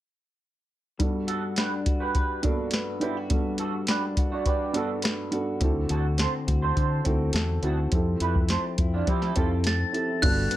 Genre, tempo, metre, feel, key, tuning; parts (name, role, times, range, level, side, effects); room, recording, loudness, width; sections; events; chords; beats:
indie pop, bedroom pop; 104 BPM; 4/4; straight; G major; A4 = 440 Hz
clean electric guitar; accompaniment; 1.0-10.6 s; G2 to B4; -32 LUFS; left 4 dB; wide subtle chorus, vibrato effect
dark upright piano; accompaniment; 1.0-10.6 s; G2 to B4; -31 LUFS; right 3 dB; cassette tape, plate reverb
soft vintage rhythm box; drums; 1.0-10.6 s; crash cymbal, hi-hat, kick drum, snare drum; -26 LUFS; equal
electric guitar through a small old amp; second line; 1.3-9.5 s; D4 to C5; -31 LUFS; right 6 dB; analog chorus, slapback echo, plate reverb
fingered electric bass; bass; 5.6-10.5 s; G1 to F3; -26 LUFS; equal
glockenspiel with hard plastic mallets; melody; 9.7-10.6 s; F#6 to A6; -27 LUFS; left 1 dB; wide subtle chorus, slapback echo, plate reverb
granular cloud pad; sustained chords; 10.2-10.6 s; barely audible
light reverb; -23 LUFS; side -14 dB against mid
1.0-10.2 A section
1.0 Gmaj9; 5.6 D7; 7.9 Fmaj9
| 0.99 1.57 2.15 2.73 | 3.30 3.88 4.46 5.04 | 5.61 6.19 6.77 7.34 | 7.92 8.50 9.07 9.65 | 10.23